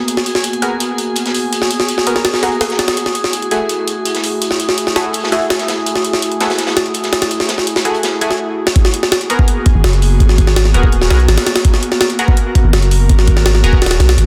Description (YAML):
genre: drum and bass, jungle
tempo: 166 BPM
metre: 4/4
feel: straight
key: G# minor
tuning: A4 = 439 Hz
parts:
  - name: airy breathy pad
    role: sustained chords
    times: 0.0-14.3 s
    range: A3 to A#4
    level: -23 LUFS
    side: equal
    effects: chorus
  - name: drifting glass-harmonics texture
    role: texture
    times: 0.0-8.4 s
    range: G#4 to G#5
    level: -28 LUFS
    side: equal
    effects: chorus, built-in reverb
  - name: crunchy breakbeat drum kit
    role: drums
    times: 0.1-8.4 s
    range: hi-hat, snare drum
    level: -26 LUFS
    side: equal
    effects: high-pass filter on hats, small room ambience, high-pass filter on snare, high-pass filter on room
  - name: jungle sampler-style drum kit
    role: drums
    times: 0.1-14.3 s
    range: hi-hat, kick drum, snare drum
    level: -16 LUFS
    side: equal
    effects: small room ambience
  - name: band-passed chord stab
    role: stabs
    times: 0.6-13.8 s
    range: A3 to A#4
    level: -23 LUFS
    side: equal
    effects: chorus, phaser, dub echo
  - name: long sustained 808-style bass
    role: bass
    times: 9.8-14.3 s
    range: D#1 to B1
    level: -14 LUFS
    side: equal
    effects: tube saturation
room: light reverb, digital ambience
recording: dense, heavily limited modern master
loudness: -14 LUFS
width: mono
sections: 0.0-8.8 A section; 8.8-14.3 B section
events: filter sweep on analog synth pad 0.0-8.8; drum fill 8.6; drop 8.8-14.3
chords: 0.0 G#m9; 3.0 F#m9; 8.8 G#m9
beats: | 0.08 0.44 0.81 1.17 | 1.53 1.89 2.25 2.61 | 2.97 3.33 3.70 4.06 | 4.42 4.78 5.14 5.50 | 5.87 6.23 6.59 6.95 | 7.31 7.67 8.03 8.40 | 8.76 9.12 9.48 9.84 | 10.20 10.56 10.93 11.29 | 11.65 12.01 12.37 12.73 | 13.09 13.46 13.82 14.18